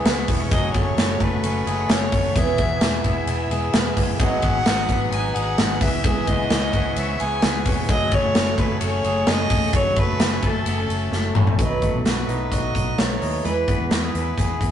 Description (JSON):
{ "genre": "jangly indie pop", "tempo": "130 BPM", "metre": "4/4", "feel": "straight", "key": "F# dorian", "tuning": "A4 = 440 Hz", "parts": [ { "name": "fingerpicked steel-string acoustic guitar", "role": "accompaniment", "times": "0.0-14.7 s", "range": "G#2 to A4", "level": "-29 LUFS", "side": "right 4 dB", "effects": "none" }, { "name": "string machine, violins", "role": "sustained chords", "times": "0.0-11.6 s", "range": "A3 to E6", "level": "-33 LUFS", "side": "left 1 dB", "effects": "none" }, { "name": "electric guitar through a small old amp", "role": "arpeggios", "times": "0.0-14.7 s", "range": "E3 to G#4", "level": "-27 LUFS", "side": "left 2 dB", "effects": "none" }, { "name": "vintage muted fingered electric bass", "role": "bass", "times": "0.0-14.7 s", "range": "E1 to E2", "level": "-27 LUFS", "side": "equal", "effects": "none" }, { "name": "big rock drum kit", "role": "drums", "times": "0.1-14.7 s", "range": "hi-hat, kick drum, ride cymbal, snare drum, toms", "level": "-22 LUFS", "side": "equal", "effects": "none" }, { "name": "warm violin", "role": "melody", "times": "0.5-14.7 s", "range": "A4 to G#5", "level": "-26 LUFS", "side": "equal", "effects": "none" } ], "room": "moderate stone room reverb, RT60 0.9 s", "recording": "rough rehearsal-room recording, tube saturation, nothing above 10.9 kHz", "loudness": "-18 LUFS", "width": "side -9 dB against mid", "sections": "0.0-11.6 A section; 11.6-14.7 B section", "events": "drum fill 11.1-11.6", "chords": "0.0 C#m7; 0.5 F#madd9; 2.4 E; 4.2 G#m7; 5.8 C#m7; 7.9 F#madd9; 11.6 B7; 13.4 E" }